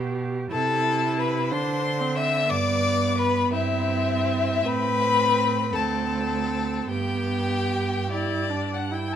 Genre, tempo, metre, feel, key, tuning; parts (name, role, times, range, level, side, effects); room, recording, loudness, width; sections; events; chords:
classical, slow romantic movement for string quartet; 49-62 BPM (dotted quarters); 6/8; rubato; G major; A4 = 438 Hz
rich viola; accompaniment; 0.0-9.2 s; B3 to G4; -29 LUFS; right 3 dB
clear cello; bass; 0.0-9.1 s; D2 to D3; -28 LUFS; right 4 dB
rich violin; melody; 0.5-9.2 s; D5 to E6; -26 LUFS; left 7 dB
rich violin; second line; 0.5-8.9 s; E4 to E5; -28 LUFS; left 1 dB
light reverb; close, detailed microphones; -22 LUFS; side -9 dB against mid
0.0-9.2 A section
0.0 G/B; 0.5 Am/C; 1.5 Cadd9/D; 2.5 G; 3.5 C/G; 4.7 Am; 5.7 D5; 6.9 G